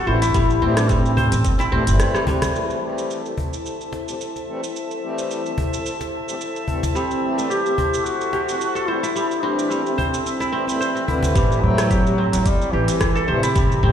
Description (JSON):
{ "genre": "organic downtempo", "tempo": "109 BPM", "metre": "4/4", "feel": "swing 55% on 16ths", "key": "A minor", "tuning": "A4 = 443 Hz", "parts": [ { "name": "warm duduk", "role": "melody", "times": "0.0-2.0, 6.9-13.9 s", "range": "C3 to G4", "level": "-23 LUFS", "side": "left 1 dB", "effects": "tape echo" }, { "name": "airy breathy pad", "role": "sustained chords", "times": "0.0-13.9 s", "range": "C4 to A5", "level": "-29 LUFS", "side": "left 2 dB", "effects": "chorus, sidechain pumping" }, { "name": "kora", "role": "arpeggios", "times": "0.0-3.5, 7.0-13.9 s", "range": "G3 to C5", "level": "-25 LUFS", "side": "right 1 dB", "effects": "tape echo" }, { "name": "pedal harmonium", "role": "accompaniment", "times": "0.1-13.9 s", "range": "E3 to B5", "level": "-28 LUFS", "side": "left 2 dB", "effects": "sidechain pumping, tape echo" }, { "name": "upright bass", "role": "bass", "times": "0.1-2.0, 11.4-13.9 s", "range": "G1 to A2", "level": "-20 LUFS", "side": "equal", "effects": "sidechain pumping" }, { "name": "organic electronic drum kit", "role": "drums", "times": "0.2-13.8 s", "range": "hi-hat, rim click, shaker", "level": "-30 LUFS", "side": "equal", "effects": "none" }, { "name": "electronic kick drum", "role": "drums", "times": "0.3-1.6, 11.4-13.7 s", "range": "none", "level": "-20 LUFS", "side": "equal", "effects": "overdrive" }, { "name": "cajon", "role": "percussion", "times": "1.2-11.3 s", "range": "none", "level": "-26 LUFS", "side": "left 1 dB", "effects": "none" }, { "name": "drifting glass-harmonics texture", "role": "texture", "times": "3.2-13.9 s", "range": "E5", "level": "-35 LUFS", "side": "right 4 dB", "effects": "chorus, built-in reverb" } ], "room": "moderate concert hall reverb, RT60 2.4 s", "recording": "played on a big sound system in a bare room, large studio reverb", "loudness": "-18 LUFS", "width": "side -9 dB against mid", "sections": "0.0-2.5 A section; 2.5-11.4 B section; 11.4-13.9 A section", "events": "drum fill 2.0-2.5; band accent 2.4", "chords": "0.0 Am7", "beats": "| 0.35 0.90 1.45 2.00 | 2.55 3.10 3.65 4.20 | 4.75 5.30 5.85 6.40 | 6.95 7.50 8.05 8.60 | 9.15 9.70 10.26 10.80 | 11.36 11.91 12.46 13.01 | 13.56" }